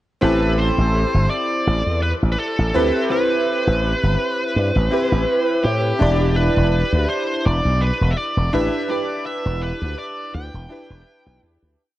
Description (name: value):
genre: vaporwave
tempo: 83 BPM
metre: 4/4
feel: swing 54% on 16ths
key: A minor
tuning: A4 = 443 Hz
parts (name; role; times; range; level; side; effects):
- high-gain lead guitar; melody; 0.2-11.4 s; G4 to G5; -23 LUFS; equal; distortion, tape echo
- bright electric grand piano; accompaniment; 0.2-11.8 s; C4 to D5; -22 LUFS; equal; analog chorus
- slap bass with an envelope filter; bass; 0.2-11.7 s; E1 to A2; -19 LUFS; equal; none
room: light reverb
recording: cassette tape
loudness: -17 LUFS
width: side -15 dB against mid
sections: 0.2-11.8 groove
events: fade-out 7.9-11.8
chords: 0.2 Am9; 6.0 Em7